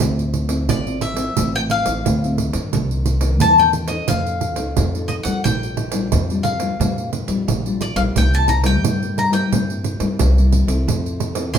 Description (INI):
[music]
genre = samba and choro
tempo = 88 BPM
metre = 4/4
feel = straight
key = unclear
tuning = A4 = 440 Hz
[part]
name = nylon-string guitar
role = accompaniment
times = 0.0-11.6 s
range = G2 to A4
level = -24 LUFS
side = left 3 dB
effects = none
[part]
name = upright bass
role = bass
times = 0.0-11.6 s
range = A1 to G2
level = -20 LUFS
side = equal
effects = none
[part]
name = pandeiro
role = percussion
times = 0.0-11.6 s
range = none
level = -22 LUFS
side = right 5 dB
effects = none
[part]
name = bowl-back mandolin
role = melody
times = 0.7-11.6 s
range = D5 to C6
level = -20 LUFS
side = left 4 dB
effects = none
[sound]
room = wet studio reverb, RT60 0.8 s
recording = band playing live in one room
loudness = -16 LUFS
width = side -8 dB against mid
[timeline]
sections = 0.0-11.6 A section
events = none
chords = 0.0 Dm9; 2.7 Cm9; 4.1 Faug7; 5.4 Bb6; 8.2 C7; 10.9 Fmaj7